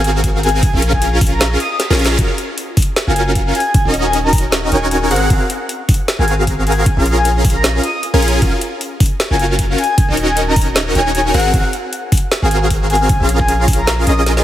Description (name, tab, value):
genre	future bass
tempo	154 BPM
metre	4/4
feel	swing 55% on 16ths, half-time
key	unclear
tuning	A4 = 438 Hz
part	breathy flute-like synth lead	melody	0.0-14.2 s	Gb5 to Eb6	-20 LUFS	left 2 dB	lush chorus, sidechain pumping, tape echo
part	supersaw chords	riff	0.0-14.4 s	C4 to Ab5	-17 LUFS	equal	sidechain pumping, digital delay
part	long sustained 808-style bass	bass	0.0-14.4 s	Eb1 to Bb1	-17 LUFS	equal	sidechain pumping
part	trap drum kit	drums	0.0-14.4 s	hi-hat, snare drum	-20 LUFS	equal	none
part	electronic kick drum	drums	0.2-13.8 s	none	-15 LUFS	equal	none
part	reverse cymbal	sound effects	1.6-2.2 s	none	-28 LUFS	right 5 dB	none
room	light reverb, digital ambience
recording	heavily compressed radio sound, multiband compression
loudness	-12 LUFS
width	side -12 dB against mid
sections	0.0-14.4 A section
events	reverse cymbal 1.6-2.2; drum fill 1.8-2.2, 14.3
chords	0.0 Ab13; 0.6 Bbm7; 2.2 Gbmaj7; 3.5 Ebm7; 5.1 Ab13; 6.9 Bbm7; 8.4 Gbmaj7; 9.8 Ebm7; 11.3 Ab13; 13.1 Bbm7